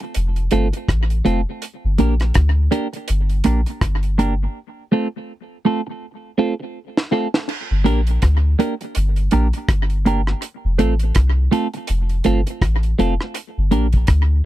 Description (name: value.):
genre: roots reggae.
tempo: 82 BPM.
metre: 4/4.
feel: swing 59% on 16ths.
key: G minor.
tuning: A4 = 436 Hz.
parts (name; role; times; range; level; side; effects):
clean electric guitar; accompaniment; 0.0-13.9 s; A3 to Bb4; -20 LUFS; right 2 dB; phaser, tape echo.
deep reggae drum kit; drums; 0.0-14.3 s; crash cymbal, hi-hat, kick drum, rim click, snare drum; -21 LUFS; equal; slapback echo.
soft dub sub bass; bass; 0.2-14.4 s; F1 to D2; -17 LUFS; equal; none.
room: little or no reverb.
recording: dry, close 1970s-style studio recording.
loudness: -17 LUFS.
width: side -15 dB against mid.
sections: 0.0-7.5 A section; 7.5-14.5 A section.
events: break 4.6-7.5; drum fill 6.0-7.5.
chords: 0.0 F; 1.6 Gm; 4.6 F; 7.5 Gm; 10.4 F; 13.3 Gm.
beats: 0.16 0.89 | 1.62 2.36 3.09 3.82 | 4.55 5.29 6.02 6.75 | 7.49 8.22 8.95 9.69 | 10.42 11.15 11.88 12.62 | 13.35 14.08.